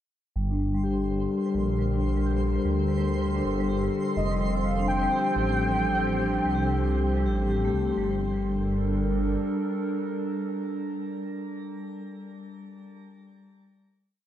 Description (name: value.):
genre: IDM.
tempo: 126 BPM.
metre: 4/4.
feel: swing 62% on 16ths.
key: G minor.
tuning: A4 = 441 Hz.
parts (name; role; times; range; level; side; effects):
warbly tape-like pad; sustained chords; 0.4-11.7 s; D3 to Bb4; -32 LUFS; right 1 dB; chorus, built-in reverb, shimmer reverb.
vibraphone with soft mallets; arpeggios; 0.4-14.3 s; G3 to G4; -29 LUFS; left 3 dB; low-pass filter, shimmer reverb, tape echo.
dark detuned saw bass; bass; 0.4-9.4 s; F1 to D2; -28 LUFS; right 1 dB; none.
twinkling granular texture; texture; 0.8-8.0 s; C5; -39 LUFS; right 4 dB; built-in reverb, shimmer reverb.
warm velvety synth lead; melody; 4.2-7.5 s; Eb5 to G5; -30 LUFS; equal; chorus, shimmer reverb, tape echo.
room: moderate echo chamber reverb, RT60 1.6 s, digital ambience.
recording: echo-heavy mix.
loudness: -24 LUFS.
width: side -11 dB against mid.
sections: 0.4-8.0 groove; 8.0-11.8 final chord.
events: filter sweep on vibraphone 0.4-8.0.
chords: 0.4 Gmadd9; 4.2 Fadd9; 8.0 Gmadd9.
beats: | 0.36 0.83 1.31 1.79 | 2.26 2.74 3.21 3.69 | 4.17 4.64 5.12 5.60 | 6.07 6.55 7.02 7.50 | 7.98 8.45 8.93 9.40 | 9.88 10.36 10.83 11.31.